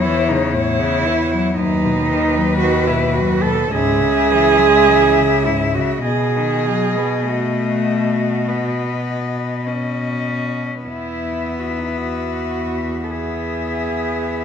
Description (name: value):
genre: classical, lyrical piece for cello ensemble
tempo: 49-59 BPM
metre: 4/4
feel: rubato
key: unclear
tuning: A4 = 440 Hz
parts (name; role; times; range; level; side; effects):
- dark cello; melody; 0.0-14.4 s; B4 to E5; -24 LUFS; left 8 dB; none
- dark cello; second line; 0.0-14.4 s; D#4 to A4; -19 LUFS; right 5 dB; none
- warm cello; accompaniment; 0.0-14.4 s; F#2 to C#4; -23 LUFS; left 4 dB; none
- warm cello; bass; 0.0-14.4 s; C#2 to B2; -22 LUFS; equal; none
room: moderate recital hall reverb, RT60 1.7 s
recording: none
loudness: -16 LUFS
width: side -7 dB against mid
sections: 0.0-14.4 A section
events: none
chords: 0.0 F#m7/E; 1.6 B/D#; 3.7 C#m; 6.0 B; 10.8 E